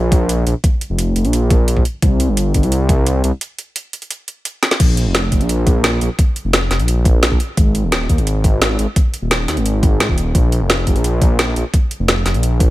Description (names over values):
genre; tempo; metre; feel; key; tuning
liquid drum and bass; 173 BPM; 4/4; straight; unclear; A4 = 443 Hz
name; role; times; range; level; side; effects
swelling detuned saw bass; bass; 0.0-12.7 s; Eb1 to Ab2; -16 LUFS; equal; tube saturation
electronic kick drum; drums; 0.1-12.7 s; none; -14 LUFS; equal; overdrive, studio reverb
garage drum kit; drums; 0.1-12.7 s; crash cymbal, hi-hat, snare drum; -18 LUFS; equal; overdrive, studio reverb
room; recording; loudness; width
little or no reverb; none; -13 LUFS; side -16 dB against mid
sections
0.0-12.7 A section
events
break 3.4-4.8; drum fill 4.6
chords
none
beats
0.29 | 0.64 0.98 1.33 1.68 | 2.02 2.37 2.72 3.07 | 3.41 3.76 4.11 4.45 | 4.80 5.15 5.49 5.84 | 6.19 6.53 6.88 7.23 | 7.57 7.92 8.27 8.62 | 8.96 9.31 9.65 10.00 | 10.35 10.70 11.04 11.39 | 11.74 12.08 12.43